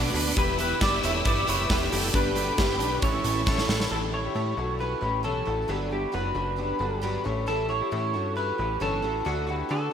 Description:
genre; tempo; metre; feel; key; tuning
jangly indie pop; 135 BPM; 4/4; straight; unclear; A4 = 440 Hz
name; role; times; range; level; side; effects
clear studio violin section; second line; 0.0-3.9 s; C#4 to E4; -37 LUFS; right 2 dB; none
combo organ; accompaniment; 0.0-3.9 s; B3 to D5; -35 LUFS; right 3 dB; none
picked plugged-in twelve-string acoustic guitar; accompaniment; 0.0-9.9 s; G2 to G4; -34 LUFS; right 4 dB; analog chorus
rich studio string section; sustained chords; 0.0-3.9 s; A4 to E6; -36 LUFS; left 4 dB; none
electric guitar through a small old amp; arpeggios; 0.0-9.9 s; C#4 to D5; -33 LUFS; left 5 dB; wide subtle chorus
plucky analog bass; bass; 0.0-9.9 s; E1 to D3; -31 LUFS; equal; none
big rock drum kit; drums; 0.1-3.9 s; hi-hat, kick drum, snare drum; -27 LUFS; equal; none
electric guitar through a small old amp; melody; 0.4-9.9 s; F#4 to E5; -29 LUFS; right 1 dB; wide subtle chorus
room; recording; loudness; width
moderate huge ambient reverb, RT60 7.9 s; dreamy mix soaked in reverb; -24 LUFS; side -8 dB against mid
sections
0.0-3.9 A section; 3.9-9.9 B section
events
drum fill 3.5-3.9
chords
0.4 Em; 2.1 G; 3.0 A; 3.9 A7; 5.7 Gmaj7; 7.3 A7; 9.3 D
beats
| 0.37 0.81 1.25 1.70 | 2.14 2.58 3.02 3.47 | 3.91 4.36 4.80 5.25 | 5.69 6.14 6.58 7.03 | 7.47 7.92 8.37 8.81 | 9.26 9.70

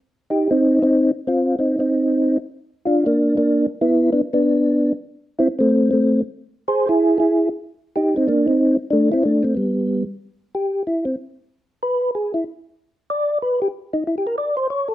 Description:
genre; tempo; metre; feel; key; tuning
jazz; 188 BPM; 4/4; swing 63% on 8ths; unclear; A4 = 442 Hz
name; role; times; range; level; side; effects
percussive tonewheel organ; solo; 0.3-14.9 s; G3 to D5; -17 LUFS; equal; slow rotary speaker, chorus vibrato
room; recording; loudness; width
moderate studio reverb, RT60 0.8 s; none; -17 LUFS; side -14 dB against mid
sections
0.0-10.2 A section; 10.2-14.9 B section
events
tonewheel organ solo 10.2-14.9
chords
0.0 Cm; 1.2 N.C.; 2.5 Bb; 3.8 N.C.; 5.1 Am; 6.4 Eaug; 7.0 N.C.; 7.6 Eb5; 8.9 Amadd11; 9.5 N.C.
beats
0.28 0.60 0.92 | 1.24 1.56 1.88 2.20 | 2.52 2.84 3.16 3.48 | 3.80 4.12 4.43 4.75 | 5.08 5.39 5.71 6.03 | 6.35 6.67 6.99 7.31 | 7.63 7.95 8.27 8.59 | 8.91 9.23 9.55 9.87 | 10.19 10.51 10.83 11.15 | 11.47 11.79 12.11 12.43 | 12.75 13.07 13.39 13.71 | 14.03 14.35 14.67

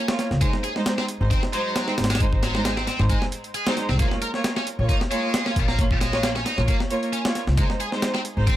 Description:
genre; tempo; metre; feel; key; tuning
breakbeat, breaks; 134 BPM; 4/4; swing 54% on 16ths; unclear; A4 = 436 Hz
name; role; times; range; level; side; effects
rich symphonic string section; stabs; 0.1-8.5 s; Ab3 to Db5; -27 LUFS; right 1 dB; vintage 12-bit sampler grit, dub echo
breakbeat sampler-style drum kit; drums; 0.1-8.6 s; hi-hat, kick drum, snare drum; -24 LUFS; equal; none
upright bass; bass; 0.3-8.5 s; Ab1 to Db2; -24 LUFS; equal; none
heavy high-gain guitar; riff; 0.4-8.6 s; Gb3 to Bb4; -28 LUFS; equal; distortion, tube saturation, dub echo
room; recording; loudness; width
little or no reverb; none; -20 LUFS; side -13 dB against mid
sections
0.0-8.6 A section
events
none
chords
0.4 Ab; 4.0 Bbm; 7.6 Ab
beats
| 0.41 0.86 1.31 1.76 | 2.20 2.65 3.10 3.55 | 4.00 4.44 4.89 5.34 | 5.79 6.23 6.68 7.13 | 7.58 8.03 8.47

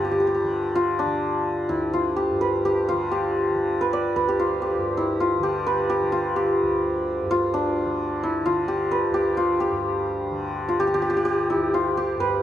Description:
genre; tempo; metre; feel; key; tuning
indian classical; 128 BPM; 7/4; straight; D raga bageshri; A4 = 440 Hz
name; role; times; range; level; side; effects
santur; melody; 0.0-12.4 s; D4 to D5; -21 LUFS; equal; none
tanpura; drone; 0.0-12.4 s; D2 to D3; -31 LUFS; right 1 dB; none
room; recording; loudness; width
light reverb; close, detailed microphones; -21 LUFS; side -11 dB against mid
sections
0.0-12.4 A section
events
none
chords
none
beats
0.28 0.75 1.22 1.69 2.16 2.63 | 3.10 3.56 4.03 4.50 4.97 5.43 5.90 | 6.37 6.84 7.30 7.77 8.24 8.70 9.17 | 9.64 10.10 10.57 11.03 11.50 11.96

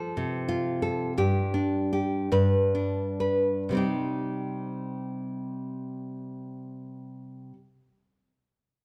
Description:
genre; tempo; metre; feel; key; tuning
folk, solo fingerstyle acoustic guitar; 40-63 BPM (dotted quarters); 6/8; rubato; C minor; A4 = 437 Hz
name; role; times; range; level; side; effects
nylon-string guitar; solo; 0.0-7.6 s; G2 to B4; -29 LUFS; equal; none
room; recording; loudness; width
moderate large studio reverb, RT60 1.4 s; dark, warm production; -28 LUFS; mono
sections
0.0-3.7 A section; 3.7-8.8 B section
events
slowing down 0.0-3.7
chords
0.0 F; 1.2 G5; 2.3 G; 3.7 Cm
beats
0.15 | 1.16 2.31 | 3.68 5.17 | 6.62

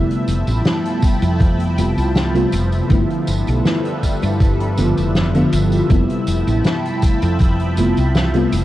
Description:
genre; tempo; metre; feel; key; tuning
vaporwave; 80 BPM; 4/4; straight; F lydian; A4 = 439 Hz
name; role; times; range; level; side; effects
FM electric piano with soft pad layer; accompaniment; 0.0-8.6 s; C3 to F4; -19 LUFS; equal; tremolo, analog chorus, tape echo
lush unison pad; sustained chords; 0.0-8.6 s; F3 to B5; -25 LUFS; equal; chorus, phaser
woody fretless electric bass; bass; 0.0-8.6 s; F1 to G2; -19 LUFS; equal; ensemble chorus
soft-mallet drum kit; drums; 0.1-8.6 s; hi-hat, snare drum, tambourine; -23 LUFS; equal; none
electronic kick drum; drums; 1.0-7.6 s; none; -16 LUFS; equal; none
room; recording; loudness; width
light reverb, small room ambience; worn, warbling old tape, cassette tape, warbly pitch drift; -14 LUFS; side -15 dB against mid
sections
0.0-8.6 A section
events
none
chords
0.0 Fmaj9#11; 2.9 G13; 5.9 Fmaj9#11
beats
0.65 1.40 2.15 | 2.90 3.65 4.40 5.15 | 5.90 6.65 7.40 8.15

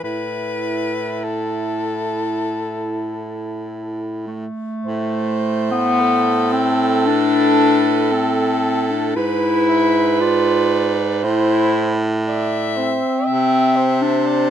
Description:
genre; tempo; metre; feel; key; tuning
classical, lyrical piece for single-reed quartet; 49-61 BPM; 4/4; rubato; A minor; A4 = 440 Hz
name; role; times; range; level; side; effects
warm soprano saxophone; melody; 0.0-14.5 s; A4 to E5; -26 LUFS; left 6 dB; none
clear alto saxophone; second line; 0.0-14.5 s; E4 to E5; -23 LUFS; right 9 dB; none
clear baritone saxophone; bass; 0.0-14.5 s; G#2 to C3; -23 LUFS; right 2 dB; none
dark clarinet; accompaniment; 0.1-14.5 s; A3 to F4; -18 LUFS; left 2 dB; none
room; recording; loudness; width
light reverb; close, detailed microphones; -16 LUFS; side -9 dB against mid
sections
0.0-4.8 A section; 4.8-14.5 B section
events
none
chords
0.0 A5; 4.8 Am; 9.2 E7/G#; 11.2 Am; 13.3 C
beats
| 0.04 1.24 2.45 3.66 | 4.85 5.98 7.07 8.12 | 9.16 10.20 11.24 12.27 | 13.27 14.26

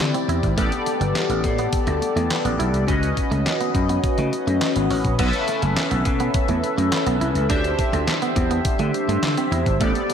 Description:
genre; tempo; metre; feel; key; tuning
early-eighties boogie funk; 104 BPM; 4/4; straight; unclear; A4 = 440 Hz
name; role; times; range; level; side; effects
chorused polysynth; accompaniment; 0.0-10.1 s; B3 to E5; -23 LUFS; left 2 dB; phaser
clean electric guitar; riff; 0.0-10.1 s; G3 to E4; -28 LUFS; right 7 dB; analog chorus
vintage slap bass; bass; 0.0-9.9 s; F#1 to D3; -23 LUFS; equal; none
detuned 8-bit digital drum machine; drums; 0.0-10.1 s; crash cymbal, handclaps, hi-hat, kick drum, snare drum; -25 LUFS; equal; none
room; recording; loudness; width
moderate plate reverb, RT60 2.1 s; dreamy mix soaked in reverb; -18 LUFS; side -8 dB against mid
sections
0.0-5.2 A section; 5.2-10.1 B section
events
none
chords
0.0 D9sus4; 0.6 A9sus4; 2.9 C#9sus4; 5.2 B9sus4; 7.5 D9sus4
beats
0.00 | 0.57 1.15 1.73 2.31 | 2.88 3.46 4.04 4.61 | 5.19 5.77 6.34 6.92 | 7.50 8.07 8.65 9.23 | 9.80

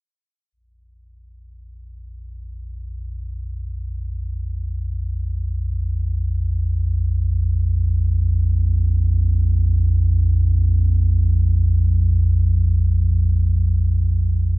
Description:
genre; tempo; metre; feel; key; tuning
ambient; free time; none; none; unclear; A4 = 437 Hz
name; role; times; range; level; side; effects
deep rumbling drone; solo; 2.0-14.6 s; Bb1 to F2; -17 LUFS; equal; built-in reverb
room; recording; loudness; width
little or no reverb; echo-heavy mix, cassette tape; -17 LUFS; side -23 dB against mid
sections
0.5-14.6 A section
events
none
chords
0.5 Bb5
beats
free time

